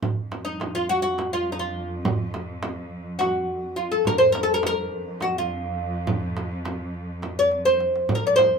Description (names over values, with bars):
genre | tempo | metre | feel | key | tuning
Turkish makam ensemble | 208 BPM (eighths) | 7/8 | straight | F makam hicaz | A4 = 440 Hz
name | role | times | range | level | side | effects
clear symphonic cello section | drone | 0.0-8.6 s | F2 | -33 LUFS | equal | none
darbuka | percussion | 0.0-8.5 s | none | -33 LUFS | right 2 dB | none
frame drum | percussion | 0.0-8.5 s | none | -29 LUFS | right 3 dB | none
oud | melody | 0.4-8.6 s | Eb4 to D5-40c | -21 LUFS | equal | none
room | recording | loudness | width
moderate small room reverb, RT60 0.5 s | minimal, uncompressed stereo recording | -22 LUFS | side -5 dB against mid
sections
0.0-8.6 A section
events
drum fill 7.5-8.1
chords
none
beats
| 0.03 0.32 0.61 0.89 1.18 1.47 1.76 | 2.05 2.33 2.62 2.91 3.20 3.49 3.77 | 4.06 4.35 4.64 4.93 5.22 5.51 5.79 | 6.08 6.37 6.66 6.95 7.24 7.53 7.82 | 8.11 8.39